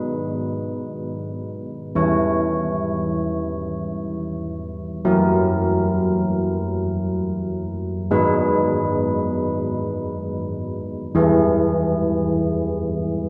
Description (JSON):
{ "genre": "classical, tune for church bells", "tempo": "free time", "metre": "none", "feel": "none", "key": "unclear", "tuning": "A4 = 438 Hz", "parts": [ { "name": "old church bells", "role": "solo", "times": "0.0-13.3 s", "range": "E3 to C#5", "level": "-22 LUFS", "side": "equal", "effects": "none" } ], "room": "wet recital hall reverb, RT60 1.5 s", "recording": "none", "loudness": "-22 LUFS", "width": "mono", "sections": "0.0-13.3 A section", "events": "none", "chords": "0.0 G#m; 2.0 C#m/E; 5.0 F#7; 8.1 G#m; 11.2 E" }